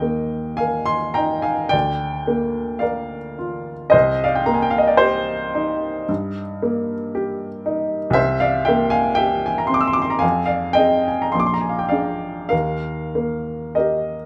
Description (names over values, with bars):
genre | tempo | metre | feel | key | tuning
classical, romantic nocturne for solo piano | 47-59 BPM | 4/4 | rubato | unclear | A4 = 440 Hz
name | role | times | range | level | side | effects
warm upright piano | solo | 0.0-14.3 s | Bb1 to E6 | -20 LUFS | equal | none
room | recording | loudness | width
light reverb | none | -20 LUFS | mono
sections
0.0-14.3 A section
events
none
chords
0.0 Eb; 1.7 Bb/D; 3.9 Cm7; 8.2 C7; 10.2 Fm; 11.3 Bb7; 12.5 Eb